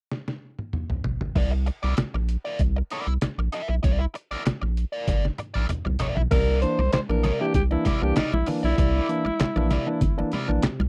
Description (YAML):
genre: funk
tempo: 97 BPM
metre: 4/4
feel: straight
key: C mixolydian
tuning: A4 = 440 Hz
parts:
  - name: trip hop sampler-style drum kit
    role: drums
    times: 0.1-10.8 s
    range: crash cymbal, handclaps, hi-hat, kick drum, snare drum, toms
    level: -29 LUFS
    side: equal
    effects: none
  - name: biting overdriven guitar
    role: accompaniment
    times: 1.4-10.8 s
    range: E4 to E5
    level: -33 LUFS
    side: equal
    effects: wah
  - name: rubbery square bass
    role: bass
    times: 1.4-10.9 s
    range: G1 to C2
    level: -27 LUFS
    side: equal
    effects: none
  - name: growling alto saxophone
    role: melody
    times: 6.3-10.4 s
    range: Eb4 to C5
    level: -29 LUFS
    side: equal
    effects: none
  - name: barky tine electric piano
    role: stabs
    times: 6.3-10.8 s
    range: C3 to D4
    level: -30 LUFS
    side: equal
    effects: overdrive
  - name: congas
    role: percussion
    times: 6.3-10.9 s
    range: none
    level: -34 LUFS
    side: equal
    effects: none
room: little or no reverb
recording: dry, close 1970s-style studio recording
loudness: -25 LUFS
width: mono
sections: 0.0-1.4 A section; 1.4-6.3 B section; 6.3-10.9 C section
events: drum fill 0.1-1.4, 5.1-6.3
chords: 0.0 N.C.; 1.4 C9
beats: 0.11 0.73 | 1.35 1.98 2.60 3.22 | 3.84 4.46 5.08 5.70 | 6.32 6.93 7.55 8.17 | 8.78 9.40 10.01 10.63